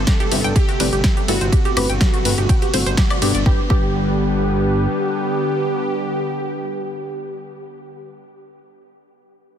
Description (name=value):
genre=progressive house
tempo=124 BPM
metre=4/4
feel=straight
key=G major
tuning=A4 = 439 Hz
part: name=plucky unison lead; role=melody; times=0.0-8.1 s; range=F#4 to A4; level=-25 LUFS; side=right 1 dB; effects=sidechain pumping, ping-pong delay
part: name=lush unison pad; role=sustained chords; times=0.0-8.1 s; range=B2 to B3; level=-26 LUFS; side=equal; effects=chorus, sidechain pumping
part: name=fat analog bass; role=bass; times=0.0-4.9 s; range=G1 to G2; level=-20 LUFS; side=equal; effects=sidechain pumping
part: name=analog pluck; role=arpeggios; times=0.1-3.8 s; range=F#4 to G5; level=-27 LUFS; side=right 4 dB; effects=chorus, sidechain pumping, ping-pong delay
part: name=deep house drum kit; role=drums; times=0.1-3.4 s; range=hi-hat, ride cymbal, snare drum, woodblock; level=-24 LUFS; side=equal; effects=overdrive
part: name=electronic kick drum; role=drums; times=0.1-3.9 s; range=none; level=-16 LUFS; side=equal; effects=none
part: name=deep mellow chord stab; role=stabs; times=0.3-8.4 s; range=G3 to D5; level=-27 LUFS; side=left 5 dB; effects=chorus, phaser, sidechain pumping, ping-pong delay
room=little or no reverb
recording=dense, heavily limited modern master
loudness=-16 LUFS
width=side -9 dB against mid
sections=0.0-3.5 A section; 3.5-7.3 B section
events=drop 0.0-3.5; band accent 3.0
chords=0.0 Amadd9/G; 3.5 G